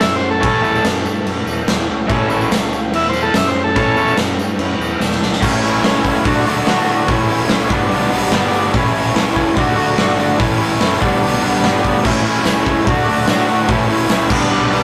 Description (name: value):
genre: garage rock duo or trio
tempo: 145 BPM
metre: 4/4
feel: straight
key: A mixolydian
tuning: A4 = 440 Hz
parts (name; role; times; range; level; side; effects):
- combo organ; melody; 0.0-4.2 s; C#4 to E5; -20 LUFS; equal; digital delay
- overdriven combo organ; sustained chords; 0.0-14.8 s; C#4 to B5; -30 LUFS; equal; none
- fuzz fingered electric bass; bass; 0.0-14.8 s; F#1 to A2; -25 LUFS; equal; overdrive
- raw garage drum kit; drums; 0.0-14.8 s; crash cymbal, hi-hat, kick drum, snare drum; -20 LUFS; equal; none
- tambourine; percussion; 0.0-5.4, 12.5-14.2 s; none; -39 LUFS; equal; none
- raw garage guitar; riff; 0.4-14.8 s; G2 to A4; -18 LUFS; equal; overdrive
room: moderate stone room reverb, RT60 1.3 s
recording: rough rehearsal-room recording, tube saturation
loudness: -15 LUFS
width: mono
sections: 0.0-5.4 A section; 5.4-14.8 B section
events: transistor combo organ solo 0.0-5.4; transistor combo organ fill 4.8-5.4, 7.9-8.7; drum fill 5.0-5.4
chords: 0.0 A; 6.3 D; 7.1 A; 7.7 G; 8.7 A; 9.6 D; 10.4 A; 11.0 G; 12.0 A; 12.9 D; 13.7 A; 14.3 G